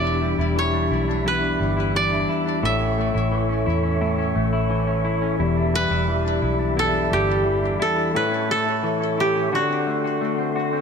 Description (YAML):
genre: dream pop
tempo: 87 BPM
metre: 4/4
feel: straight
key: E dorian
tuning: A4 = 440 Hz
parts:
  - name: koto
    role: melody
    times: 0.0-10.8 s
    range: F#4 to E5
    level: -23 LUFS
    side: right 1 dB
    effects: ping-pong delay
  - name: mellow tonewheel organ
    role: sustained chords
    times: 0.0-10.8 s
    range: D4 to C#6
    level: -26 LUFS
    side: right 1 dB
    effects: fast rotary speaker
  - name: semi-hollow electric guitar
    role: arpeggios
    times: 0.0-10.8 s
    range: E2 to F#4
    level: -24 LUFS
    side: left 3 dB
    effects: lush chorus, ping-pong delay
  - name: vintage muted fingered electric bass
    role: bass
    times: 0.0-7.8 s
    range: E1 to E2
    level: -25 LUFS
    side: right 1 dB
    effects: none
room: moderate lush hall reverb, RT60 2.3 s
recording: none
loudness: -19 LUFS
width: side -6 dB against mid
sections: 0.0-10.8 A section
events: none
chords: 0.0 Em7; 2.6 A; 5.4 Em7; 8.1 A; 9.5 D7